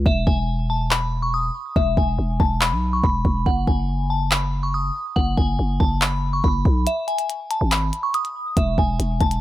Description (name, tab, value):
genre	hip hop, trap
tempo	141 BPM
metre	4/4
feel	half-time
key	E major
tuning	A4 = 440 Hz
part	growling 808-style bass	bass	0.0-9.4 s	E1 to B1	-22 LUFS	equal	none
part	glassy synth bell	melody	0.1-9.4 s	E5 to D#6	-24 LUFS	left 1 dB	chorus, phaser, low-pass filter, tape echo
part	glitchy drum kit	drums	0.1-9.4 s	handclaps, hi-hat, kick drum	-21 LUFS	equal	none
room	little or no reverb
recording	none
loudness	-19 LUFS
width	side -14 dB against mid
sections	0.0-9.4 A section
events	break 0.1-6.9, 6.9-7.3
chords	0.1 E5; 3.5 F#sus4; 6.9 E5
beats	| 0.06 0.48 0.91 1.33 | 1.76 2.19 2.61 3.04 | 3.46 3.89 4.31 4.74 | 5.16 5.59 6.01 6.44 | 6.87 7.29 7.72 8.14 | 8.57 8.99